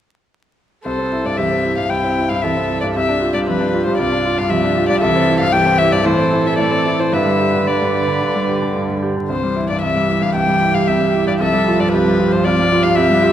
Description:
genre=quick classical-period movement for piano quartet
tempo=114 BPM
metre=4/4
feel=rubato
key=C major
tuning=A4 = 440 Hz
part: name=warm violin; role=melody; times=0.8-13.3 s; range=B4 to G5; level=-18 LUFS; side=left 4 dB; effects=none
part: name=clear grand piano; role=accompaniment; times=0.9-13.3 s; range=C2 to G4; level=-18 LUFS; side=equal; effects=none
part: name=warm viola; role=accompaniment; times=0.9-13.3 s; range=E4 to B4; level=-22 LUFS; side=right 5 dB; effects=none
part: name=warm cello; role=second line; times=1.4-13.3 s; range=D3 to F3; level=-23 LUFS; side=right 4 dB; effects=none
room=wet scoring stage reverb, RT60 1.9 s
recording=vinyl crackle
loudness=-14 LUFS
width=side -10 dB against mid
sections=0.8-13.3 A section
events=none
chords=0.8 C; 3.0 G5/C; 5.0 C; 6.1 Am; 7.1 G; 9.3 C; 11.4 Fmaj13/C

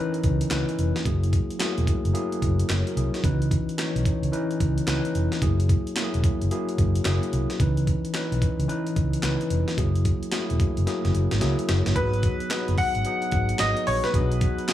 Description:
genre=R&B, new jack swing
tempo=110 BPM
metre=4/4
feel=swing 64% on 16ths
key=C# dorian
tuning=A4 = 438 Hz
part: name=tine electric piano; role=accompaniment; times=0.0-14.7 s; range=D#3 to C#5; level=-27 LUFS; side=left 1 dB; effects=medium stereo tremolo
part: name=breakbeat sampler-style drum kit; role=drums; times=0.1-14.7 s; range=handclaps, hi-hat, kick drum, snare drum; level=-26 LUFS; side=equal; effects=none
part: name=vintage muted fingered electric bass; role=bass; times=0.2-14.5 s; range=E1 to C#2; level=-24 LUFS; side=equal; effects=none
part: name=bright grand piano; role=melody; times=12.0-14.7 s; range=B4 to F#5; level=-26 LUFS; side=left 1 dB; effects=tape echo
room=light reverb, digital ambience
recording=none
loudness=-22 LUFS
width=side -12 dB against mid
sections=0.0-12.0 A section; 12.0-14.7 B section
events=drum fill 10.9-12.0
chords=0.0 C#m9; 1.1 F#9; 3.2 C#m9; 5.4 F#9; 7.6 C#m9; 9.8 F#9; 12.0 G#m7; 14.1 B6

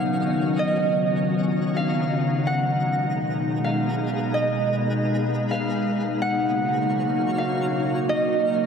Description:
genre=hip hop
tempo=128 BPM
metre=4/4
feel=half-time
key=Eb minor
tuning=A4 = 436 Hz
part: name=concert harp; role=melody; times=0.0-8.7 s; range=Eb5 to Gb5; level=-25 LUFS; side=right 2 dB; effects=tape echo
part: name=glassy FM pad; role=sustained chords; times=0.0-8.7 s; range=Cb3 to Ab4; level=-23 LUFS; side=left 1 dB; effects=ensemble chorus, built-in reverb
part: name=twinkling granular texture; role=texture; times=0.0-8.7 s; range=Cb4 to F6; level=-32 LUFS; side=left 1 dB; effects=built-in reverb
room=wet cathedral reverb, RT60 6.1 s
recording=dreamy mix soaked in reverb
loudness=-21 LUFS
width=side -6 dB against mid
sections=0.0-8.7 A section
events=none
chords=0.0 Ebm9; 2.5 Abm9; 6.2 Ebm9

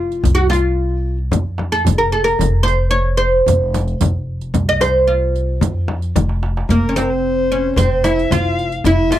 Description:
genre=Arabic maqam ensemble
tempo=112 BPM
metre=4/4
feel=straight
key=F maqam hijaz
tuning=A4 = 436 Hz
part: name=oud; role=melody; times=0.0-9.2 s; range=Bb3 to Eb5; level=-17 LUFS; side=right 1 dB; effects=none
part: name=upright bass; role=bass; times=0.0-9.1 s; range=F1 to F2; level=-19 LUFS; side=equal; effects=none
part: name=darbuka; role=percussion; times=0.1-9.2 s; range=none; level=-22 LUFS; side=right 1 dB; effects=none
part: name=riq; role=percussion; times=0.1-9.2 s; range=none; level=-27 LUFS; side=right 16 dB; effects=none
part: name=frame drum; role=percussion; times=0.2-9.2 s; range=none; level=-21 LUFS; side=left 4 dB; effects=none
part: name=dark violin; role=second line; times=6.7-9.2 s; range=Bb4 to F5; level=-21 LUFS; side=left 5 dB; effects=none
room=little or no reverb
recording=dry, close 1970s-style studio recording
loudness=-14 LUFS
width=side -12 dB against mid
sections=0.0-6.7 A section; 6.7-9.2 B section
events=drum fill 6.2-6.7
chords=none

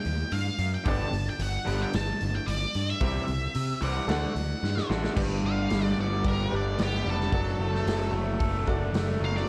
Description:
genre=classic rock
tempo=111 BPM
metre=4/4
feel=straight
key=G major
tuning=A4 = 442 Hz
part: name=octave-fuzz lead guitar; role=melody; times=0.0-9.5 s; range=G4 to A5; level=-36 LUFS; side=equal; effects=wah, distortion, slapback echo
part: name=raw garage drum kit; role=drums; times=0.0-9.4 s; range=crash cymbal, hi-hat, kick drum, snare drum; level=-35 LUFS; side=equal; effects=none
part: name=fuzz picked electric bass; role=bass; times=0.1-9.4 s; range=F1 to C3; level=-32 LUFS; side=equal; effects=overdrive
part: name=raw garage guitar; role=riff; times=0.8-9.5 s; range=G2 to A4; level=-33 LUFS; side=equal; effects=overdrive
part: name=clear baby grand piano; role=accompaniment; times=0.9-9.3 s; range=F#4 to E5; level=-41 LUFS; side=equal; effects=none
room=small room ambience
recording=none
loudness=-28 LUFS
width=mono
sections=0.0-5.2 A section; 5.2-9.5 B section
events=half time 0.0-5.2; drum fill 4.6-5.2; lead electric guitar solo 5.2-9.5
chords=0.0 Eb; 0.9 G; 3.0 C; 4.1 D; 5.2 G; 7.3 D/F#

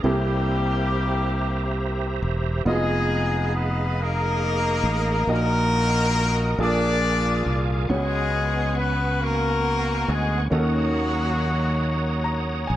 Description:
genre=gospel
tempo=46 BPM (dotted quarters)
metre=6/8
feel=straight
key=Eb minor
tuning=A4 = 440 Hz
part: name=clear horn section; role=melody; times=0.0-12.7 s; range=Gb3 to D5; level=-25 LUFS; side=left 2 dB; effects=none
part: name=clear concert grand piano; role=accompaniment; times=0.0-12.8 s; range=Bb2 to Bb5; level=-28 LUFS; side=right 1 dB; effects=none
part: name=bright tonewheel organ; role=sustained chords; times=0.0-12.8 s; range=Cb4 to Eb6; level=-31 LUFS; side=right 4 dB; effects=fast rotary speaker, chorus vibrato
part: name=fingered electric bass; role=bass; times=0.0-12.8 s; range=E1 to Eb2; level=-24 LUFS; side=equal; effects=none
room=light reverb, studio reverb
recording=none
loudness=-20 LUFS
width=side -13 dB against mid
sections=0.0-12.8 A section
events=grand piano fill 11.8-12.8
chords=0.0 C7; 2.7 Fm7b5; 5.3 Ebm/Bb; 6.6 Bb7; 7.9 Db7sus4; 10.5 Ebm7

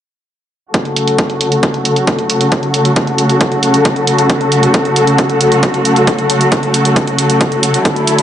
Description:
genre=uplifting trance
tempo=135 BPM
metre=4/4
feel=straight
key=F# minor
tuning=A4 = 440 Hz
part: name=warm studio string section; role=sustained chords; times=0.7-8.2 s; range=C#3 to A4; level=-11 LUFS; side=left 1 dB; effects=sidechain pumping, low-pass filter
part: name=electronic hi-hat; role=drums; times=0.7-8.2 s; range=none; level=-19 LUFS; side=right 4 dB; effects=low-pass filter on hats, low-pass filter on room
part: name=electronic kick drum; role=drums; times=0.7-7.9 s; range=none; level=-16 LUFS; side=equal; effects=high-pass filter on kick, high-pass filter on room
room=light reverb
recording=nothing above 10.8 kHz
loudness=-10 LUFS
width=side -10 dB against mid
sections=0.7-8.2 A section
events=filter sweep on string section 0.7-8.2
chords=0.7 F#m

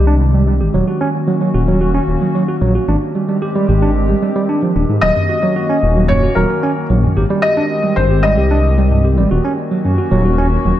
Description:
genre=IDM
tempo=112 BPM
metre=4/4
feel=straight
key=unclear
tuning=A4 = 441 Hz
part: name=warbly tape-like pad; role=sustained chords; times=0.0-10.8 s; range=Eb3 to G4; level=-20 LUFS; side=left 1 dB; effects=chorus, built-in reverb, vintage 12-bit sampler grit
part: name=tine electric piano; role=arpeggios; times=0.0-10.7 s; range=Gb2 to G4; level=-17 LUFS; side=right 2 dB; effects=medium tremolo, low-pass filter, tape echo
part: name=dark detuned saw bass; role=bass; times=0.0-10.7 s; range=Eb1 to Ab2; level=-14 LUFS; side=equal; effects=none
part: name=felt-muted upright piano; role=melody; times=5.0-9.0 s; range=Bb4 to Eb5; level=-18 LUFS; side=left 2 dB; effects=tape echo
room=moderate echo chamber reverb, RT60 1.8 s, digital ambience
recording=dark, warm production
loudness=-12 LUFS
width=side -12 dB against mid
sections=0.0-10.8 A section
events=none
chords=0.0 Abmaj7; 0.7 Ebm7; 2.9 Abmaj7; 5.0 Ebm7; 7.2 Abmaj7; 9.3 Ebm7

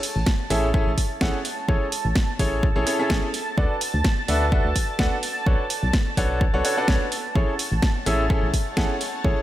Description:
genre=piano house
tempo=127 BPM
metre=4/4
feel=swing 54% on 16ths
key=A major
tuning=A4 = 440 Hz
part: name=analog string pad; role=sustained chords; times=0.0-9.4 s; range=A5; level=-31 LUFS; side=right 2 dB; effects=ensemble chorus, sidechain pumping
part: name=house drum kit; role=drums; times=0.0-9.1 s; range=hi-hat, snare drum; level=-28 LUFS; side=right 1 dB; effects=none
part: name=rich studio string section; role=texture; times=0.0-9.4 s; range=G#3 to F#5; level=-43 LUFS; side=left 3 dB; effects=none
part: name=solid FM bass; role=bass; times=0.2-9.3 s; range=A1 to D2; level=-25 LUFS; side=equal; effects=sidechain pumping
part: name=electronic kick drum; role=drums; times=0.3-9.3 s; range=none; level=-22 LUFS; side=equal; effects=none
part: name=bright baby grand piano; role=riff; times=0.5-9.4 s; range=C#4 to F#5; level=-26 LUFS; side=equal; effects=sidechain pumping, tape echo
room=light reverb, digital ambience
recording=none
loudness=-20 LUFS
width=side -14 dB against mid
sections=0.0-9.4 A section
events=none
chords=0.0 Amaj7; 3.3 D6; 5.2 Bm9; 7.4 Amaj7

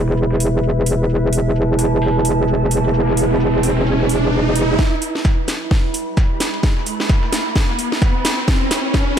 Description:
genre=bass house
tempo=130 BPM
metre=4/4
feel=swing 58% on 16ths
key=unclear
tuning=A4 = 436 Hz
part: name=metallic wobble bass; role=bass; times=0.0-4.8 s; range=E1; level=-16 LUFS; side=equal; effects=chorus, sidechain pumping
part: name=warbly tape-like pad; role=texture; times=0.0-9.2 s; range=E4 to B5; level=-22 LUFS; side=right 2 dB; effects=chorus, built-in reverb, sidechain pumping
part: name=dusty soul sampler-style drum kit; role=drums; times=0.1-9.2 s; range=hi-hat, shaker, snare drum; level=-34 LUFS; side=equal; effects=sidechain pumping on perc, high-pass filter on perc, low-pass filter on perc, high-pass filter on snare, low-pass filter on snare, sidechain pumping on hats, high-pass filter on hats, low-pass filter on hats, high-pass filter on room, low-pass filter on room
part: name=house drum kit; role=drums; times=0.4-9.0 s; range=hi-hat, snare drum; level=-22 LUFS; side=equal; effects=none
part: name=riser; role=sound effects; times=2.3-9.2 s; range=none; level=-24 LUFS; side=right 1 dB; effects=none
part: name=electronic kick drum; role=drums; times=4.8-9.0 s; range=none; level=-16 LUFS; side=equal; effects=none
room=light reverb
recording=none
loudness=-15 LUFS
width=side -8 dB against mid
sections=0.0-4.8 A section; 4.8-9.2 B section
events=riser 2.3-4.8, 4.8-9.2; build-up 4.8-9.2; drum fill 4.8-9.2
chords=0.0 E5

